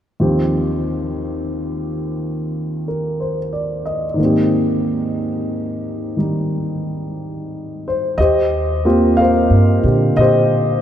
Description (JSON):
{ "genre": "jazz ballad", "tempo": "60 BPM", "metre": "4/4", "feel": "swing 68% on 8ths", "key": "Eb major", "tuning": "A4 = 440 Hz", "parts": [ { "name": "dark concert grand piano", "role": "accompaniment", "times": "0.2-10.8 s", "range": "Eb2 to F5", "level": "-17 LUFS", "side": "equal", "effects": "none" }, { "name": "upright bass", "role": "bass", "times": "8.2-10.8 s", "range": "Eb2 to Bb2", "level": "-17 LUFS", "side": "equal", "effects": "none" } ], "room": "wet cathedral reverb, RT60 6.8 s", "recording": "in a vast, echoing space", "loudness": "-16 LUFS", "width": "side -10 dB against mid", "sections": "0.2-8.2 A section; 8.2-10.8 B section", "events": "none", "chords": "0.2 Eb6; 4.2 Abmaj7; 8.2 Eb69" }